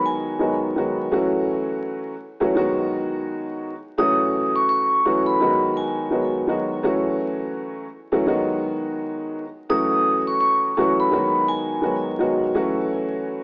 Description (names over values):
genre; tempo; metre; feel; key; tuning
hip hop; 84 BPM; 4/4; swing 60% on 16ths; F# dorian; A4 = 440 Hz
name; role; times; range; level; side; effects
vibraphone with medium hard mallets; melody; 0.0-12.0 s; G#5 to D#6; -21 LUFS; equal; high-pass filter, low-pass filter, tape echo
warm upright piano; accompaniment; 0.0-13.4 s; D#3 to F#4; -21 LUFS; equal; high-pass filter, low-pass filter
room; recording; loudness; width
moderate plate reverb, RT60 2.7 s; vinyl crackle, small speaker sound; -19 LUFS; side -32 dB against mid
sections
0.0-13.4 A section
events
none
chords
0.0 G#m7; 1.1 F#m7; 2.6 B6; 4.0 F#m7; 5.4 G#m7; 6.8 F#m7; 8.3 B6; 9.7 F#m7; 11.1 G#m7; 12.6 F#m7